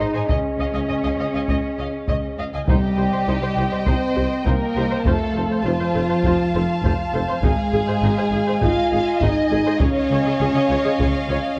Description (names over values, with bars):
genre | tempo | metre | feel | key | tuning
cinematic, epic orchestral film score | 101 BPM | 4/4 | straight | C phrygian | A4 = 437 Hz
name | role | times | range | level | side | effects
rich symphonic violin section | melody | 0.0-11.6 s | F4 to Ab5 | -31 LUFS | equal | none
warm symphonic violin section | second line | 0.0-11.6 s | C5 to A5 | -30 LUFS | equal | none
rich symphonic viola section | accompaniment | 0.0-11.4 s | Eb4 to Eb5 | -31 LUFS | equal | none
mellow French horn section | sustained chords | 0.0-11.6 s | F3 to Eb5 | -25 LUFS | equal | none
dark symphonic cello section | bass | 0.0-11.4 s | C2 to Eb4 | -31 LUFS | equal | tube saturation
rich symphonic double bass section | bass | 0.0-11.4 s | F1 to Db2 | -30 LUFS | equal | tube saturation
solo taiko drums | drums | 0.3-11.5 s | none | -26 LUFS | equal | none
dark tuba | bass | 2.7-11.4 s | F1 to Db2 | -30 LUFS | equal | transformer saturation
timpani | percussion | 2.7-3.5 s | C3 | -32 LUFS | equal | none
room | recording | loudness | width
moderate scoring stage reverb, RT60 1.7 s | worn, warbling old tape, cassette tape, warbly pitch drift | -20 LUFS | mono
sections
0.0-2.7 A section; 2.7-11.6 A section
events
none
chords
0.3 Dbsus2; 2.7 Cm; 5.1 F; 7.4 Ab5; 9.8 Dbadd9